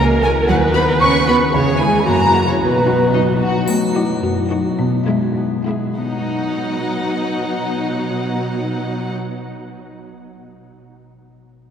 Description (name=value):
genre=cinematic, playful, whimsical film cue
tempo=96-114 BPM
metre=2/4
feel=straight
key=B major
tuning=A4 = 440 Hz
part: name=warm chamber violin section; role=melody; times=0.0-9.1 s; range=B4 to C#6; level=-26 LUFS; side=left 1 dB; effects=none
part: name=mellow hollow flute section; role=second line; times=0.0-3.4 s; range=B4 to C#6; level=-19 LUFS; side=right 1 dB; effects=none
part: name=warm symphonic viola section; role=accompaniment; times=0.0-9.1 s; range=F#3 to B4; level=-23 LUFS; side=right 1 dB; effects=none
part: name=concert harp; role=arpeggios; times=0.0-9.9 s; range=F#2 to F#5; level=-23 LUFS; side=left 5 dB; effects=none
part: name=rich chamber double bass section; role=bass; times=0.0-3.6 s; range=F#1 to F#2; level=-23 LUFS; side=right 2 dB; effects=none
part: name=warm chamber cello section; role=bass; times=0.0-9.1 s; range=F#2 to C#4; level=-22 LUFS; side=right 2 dB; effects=none
part: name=warm symphonic violin section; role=second line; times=0.2-9.1 s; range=D#4 to B4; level=-26 LUFS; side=left 1 dB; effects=none
part: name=folk marimba with medium hard mallets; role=melody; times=3.7-9.1 s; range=G#3 to F#4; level=-23 LUFS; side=left 3 dB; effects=none
part: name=triangle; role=percussion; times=3.7-4.7 s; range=none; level=-32 LUFS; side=left 2 dB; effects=none
room=wet cathedral reverb, RT60 4.7 s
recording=none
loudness=-15 LUFS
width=side -8 dB against mid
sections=0.0-3.7 A section; 3.7-6.0 B section; 6.0-8.5 C section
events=slowing down 3.1-6.0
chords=0.5 B/D#; 1.5 C#m/E; 2.1 F#7; 2.6 B; 4.8 E/B; 6.0 B